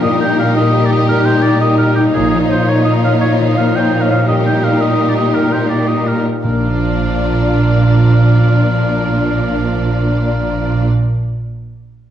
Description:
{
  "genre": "cinematic",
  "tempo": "112 BPM (dotted quarters)",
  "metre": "12/8",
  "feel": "straight",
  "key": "Bb major",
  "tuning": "A4 = 440 Hz",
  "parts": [
    { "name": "warm symphonic violin section", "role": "melody", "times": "0.0-10.9 s", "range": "Bb4 to D5", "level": "-25 LUFS", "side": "left 6 dB", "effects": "none" },
    { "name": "rich symphonic violin section", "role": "second line", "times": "0.0-10.9 s", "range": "F4 to G4", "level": "-24 LUFS", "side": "left 1 dB", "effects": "none" },
    { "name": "warm oboe", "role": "second line", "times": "0.0-10.8 s", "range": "G4 to G5", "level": "-20 LUFS", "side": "right 1 dB", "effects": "none" },
    { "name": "warm symphonic viola section", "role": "accompaniment", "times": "0.0-10.9 s", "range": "D4 to Eb4", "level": "-22 LUFS", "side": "right 2 dB", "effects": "none" },
    { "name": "mellow French horn section", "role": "sustained chords", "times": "0.0-10.9 s", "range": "F3 to Eb4", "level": "-19 LUFS", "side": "left 2 dB", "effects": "none" },
    { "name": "concert harp", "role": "arpeggios", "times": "0.0-11.1 s", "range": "Bb2 to F5", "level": "-23 LUFS", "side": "left 7 dB", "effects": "none" },
    { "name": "warm studio cello section", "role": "bass", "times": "0.0-10.9 s", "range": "Bb2", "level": "-17 LUFS", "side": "right 1 dB", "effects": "none" },
    { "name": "warm symphonic double bass section", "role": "bass", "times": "2.2-2.5, 6.4-10.9 s", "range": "Bb1", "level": "-16 LUFS", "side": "right 3 dB", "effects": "none" },
    { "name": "timpani", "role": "percussion", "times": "6.4-10.9 s", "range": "Bb2", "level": "-26 LUFS", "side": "left 1 dB", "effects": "none" }
  ],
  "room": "wet scoring stage reverb, RT60 1.6 s",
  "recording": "dark, warm production",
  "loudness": "-11 LUFS",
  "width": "side -10 dB against mid",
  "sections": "0.0-6.4 A section; 6.4-10.7 B section",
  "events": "none",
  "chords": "0.0 Eb/Bb; 2.1 Dbadd9/Bb; 4.3 Eb/Bb; 6.4 Bb"
}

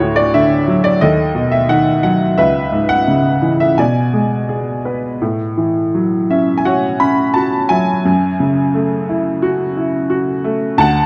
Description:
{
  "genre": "classical, lyrical solo piano",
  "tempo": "87 BPM",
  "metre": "4/4",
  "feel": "rubato",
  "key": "F# minor",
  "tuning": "A4 = 440 Hz",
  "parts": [
    { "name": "clear upright piano", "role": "solo", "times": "0.0-11.1 s", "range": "C#2 to B5", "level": "-15 LUFS", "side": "equal", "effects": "none" }
  ],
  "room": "moderate recital hall reverb, RT60 1.5 s",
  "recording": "dark, warm production",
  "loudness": "-15 LUFS",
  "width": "mono",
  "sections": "0.0-11.1 A section",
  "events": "none",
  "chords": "0.0 D; 1.0 B7/D#; 2.4 C#m7; 3.8 Bm6; 5.2 A6; 8.1 F#m7"
}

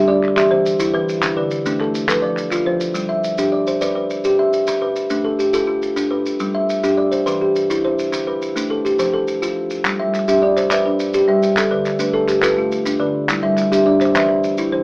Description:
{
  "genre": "southern african traditional, mbira-style interlocking cycle",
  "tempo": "139 BPM (dotted quarters)",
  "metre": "12/8",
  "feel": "straight",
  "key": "G mixolydian",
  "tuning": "A4 = 439 Hz",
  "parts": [
    { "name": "kalimba", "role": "arpeggios", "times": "0.0-14.8 s", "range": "D3 to E5", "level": "-16 LUFS", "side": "equal", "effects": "none" },
    { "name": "marimba with soft mallets", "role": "arpeggios", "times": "0.0-3.0, 10.0-14.8 s", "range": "D3 to E5", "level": "-20 LUFS", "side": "equal", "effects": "none" },
    { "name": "group handclap", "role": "percussion", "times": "0.2-2.6, 9.8-14.3 s", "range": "none", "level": "-21 LUFS", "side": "equal", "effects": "none" },
    { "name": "maracas", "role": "percussion", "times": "0.4-14.7 s", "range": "none", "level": "-31 LUFS", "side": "right 1 dB", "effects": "none" }
  ],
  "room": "moderate studio ambience, RT60 0.5 s",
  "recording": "AM radio sound",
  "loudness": "-15 LUFS",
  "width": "side -28 dB against mid",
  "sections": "0.0-3.0 A section; 3.0-14.8 B section",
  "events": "none",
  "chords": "0.4 Em; 1.2 D5; 2.1 F; 3.0 G; 4.7 Dm; 6.4 G; 7.3 Em; 8.1 D5; 9.0 F; 9.9 G; 11.6 Dm; 13.3 G; 14.2 E5"
}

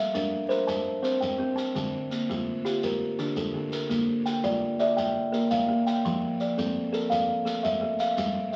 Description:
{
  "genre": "southern african traditional, mbira-style interlocking cycle",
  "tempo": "112 BPM (dotted quarters)",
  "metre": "12/8",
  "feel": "straight",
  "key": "unclear",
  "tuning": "A4 = 439 Hz",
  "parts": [
    { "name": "buzzing kalimba", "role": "arpeggios", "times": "0.0-8.6 s", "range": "D3 to A5", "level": "-28 LUFS", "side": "equal", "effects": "none" },
    { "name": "shekere", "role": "percussion", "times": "0.1-8.6 s", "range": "none", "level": "-38 LUFS", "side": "equal", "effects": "none" }
  ],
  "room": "wet studio reverb, RT60 0.5 s",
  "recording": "very old 78 rpm record, vinyl crackle",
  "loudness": "-27 LUFS",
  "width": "mono",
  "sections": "0.0-8.6 A section",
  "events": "none",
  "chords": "0.0 Gm (rootless); 0.7 C5; 1.8 Dm; 3.9 Bb; 6.0 F; 7.1 A5"
}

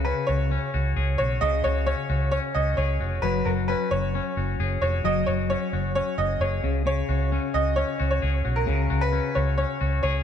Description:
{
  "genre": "indie pop",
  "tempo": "132 BPM",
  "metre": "4/4",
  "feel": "straight",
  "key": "unclear",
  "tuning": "A4 = 436 Hz",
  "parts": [
    { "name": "bright upright piano", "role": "melody", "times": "0.0-10.2 s", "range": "Bb4 to Eb5", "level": "-27 LUFS", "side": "right 1 dB", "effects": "ping-pong delay" },
    { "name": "twangy electric guitar", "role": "arpeggios", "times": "0.0-10.2 s", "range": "Db3 to Ab4", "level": "-28 LUFS", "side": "left 7 dB", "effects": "harmonic tremolo" },
    { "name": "vintage muted fingered electric bass", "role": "bass", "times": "0.0-10.2 s", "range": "F1 to Db2", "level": "-25 LUFS", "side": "right 1 dB", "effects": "none" }
  ],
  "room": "light reverb",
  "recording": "none",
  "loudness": "-22 LUFS",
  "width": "side -8 dB against mid",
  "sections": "0.0-10.2 A section",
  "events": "none",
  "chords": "0.0 Dbsus4; 3.2 Gbsus2; 6.6 Dbsus4"
}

